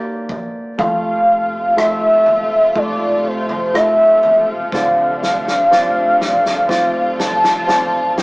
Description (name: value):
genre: pop ballad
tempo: 61 BPM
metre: 4/4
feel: straight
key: F major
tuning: A4 = 435 Hz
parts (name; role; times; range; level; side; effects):
- warm velvety synth lead; melody; 0.0-8.2 s; C5 to A5; -13 LUFS; equal; chorus
- warm baby grand piano; accompaniment; 0.0-8.2 s; D3 to F5; -22 LUFS; equal; none
- natural country drum kit; drums; 0.3-8.2 s; kick drum, rim click, snare drum, toms; -24 LUFS; equal; none
- warm studio string section; sustained chords; 0.8-8.2 s; C3 to F4; -25 LUFS; equal; none
- sub bass with octave; bass; 0.8-8.2 s; D1 to F1; -40 LUFS; equal; none
room: moderate stone room reverb, RT60 1.0 s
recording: rough rehearsal-room recording, warm saturation, small speaker sound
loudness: -12 LUFS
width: side -26 dB against mid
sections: 0.0-8.2 A section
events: drum fill 4.7-8.2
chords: 0.0 Gm; 0.8 Fmaj7; 4.7 Dm7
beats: | 0.79 1.77 2.75 3.74 | 4.72 5.71 6.69 7.67